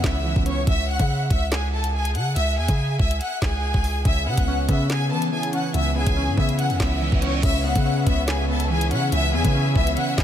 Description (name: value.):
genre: hip hop, drill.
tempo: 142 BPM.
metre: 4/4.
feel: half-time.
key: C# minor.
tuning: A4 = 440 Hz.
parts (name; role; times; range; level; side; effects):
clear studio violin section; melody; 0.0-10.2 s; G#4 to F#6; -26 LUFS; left 1 dB; ping-pong delay.
warbly lo-fi synth keys; accompaniment; 0.0-0.7, 4.1-10.2 s; C#3 to C#4; -27 LUFS; equal; chorus.
long sustained 808-style bass; bass; 0.0-10.2 s; C#2 to E3; -23 LUFS; equal; none.
drill drum kit; drums; 0.0-10.2 s; crash cymbal, handclaps, hi-hat, kick drum, snare drum; -24 LUFS; equal; overdrive.
reverse cymbal; sound effects; 6.7-7.4 s; none; -36 LUFS; right 7 dB; none.
bright studio string section; sustained chords; 7.4-10.2 s; C#3 to E5; -31 LUFS; left 2 dB; none.
room: light reverb, digital ambience.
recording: none.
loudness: -19 LUFS.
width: side -10 dB against mid.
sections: 0.0-7.4 A section; 7.4-10.2 B section.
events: reverse cymbal 6.7-7.4.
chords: 0.0 C#m7; 0.7 C#m; 4.1 C#m7.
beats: 0.25 | 0.67 1.09 1.52 1.94 | 2.36 2.79 3.21 3.63 | 4.05 4.47 4.90 5.32 | 5.74 6.17 6.59 7.01 | 7.43 7.86 8.28 8.70 | 9.12 9.54 9.97.